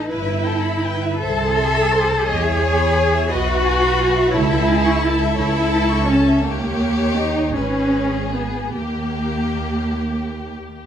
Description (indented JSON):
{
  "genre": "classical, slow romantic movement for string orchestra",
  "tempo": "48-59 BPM (dotted quarters)",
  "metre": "6/8",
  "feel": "rubato",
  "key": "unclear",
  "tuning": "A4 = 440 Hz",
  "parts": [
    { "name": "warm chamber violin section", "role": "melody", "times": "0.0-10.9 s", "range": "G4 to E6", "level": "-28 LUFS", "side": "left 4 dB", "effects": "none" },
    { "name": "rich chamber violin section", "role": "second line", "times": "0.0-10.5 s", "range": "G4 to E5", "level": "-26 LUFS", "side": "left 4 dB", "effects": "none" },
    { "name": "dark symphonic viola section", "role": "accompaniment", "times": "0.0-10.8 s", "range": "A#3 to A4", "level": "-24 LUFS", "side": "equal", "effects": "none" },
    { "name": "warm studio cello section", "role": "bass", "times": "0.0-10.8 s", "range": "A#3 to A4", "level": "-20 LUFS", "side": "equal", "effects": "none" },
    { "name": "warm symphonic double bass section", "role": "bass", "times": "0.1-10.9 s", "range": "G1 to E2", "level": "-22 LUFS", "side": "right 3 dB", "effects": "none" }
  ],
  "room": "moderate recital hall reverb, RT60 1.4 s",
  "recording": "none",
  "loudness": "-16 LUFS",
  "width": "side -9 dB against mid",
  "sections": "0.0-10.9 A section",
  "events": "none",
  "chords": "0.1 Em/G; 1.2 Am/C; 2.3 E; 4.3 A/C#; 6.4 D#7; 7.6 G#m; 8.8 D#",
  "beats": "| 0.09 1.22 | 2.29 3.31 | 4.33 5.37 | 6.44 7.55 | 8.76 9.96"
}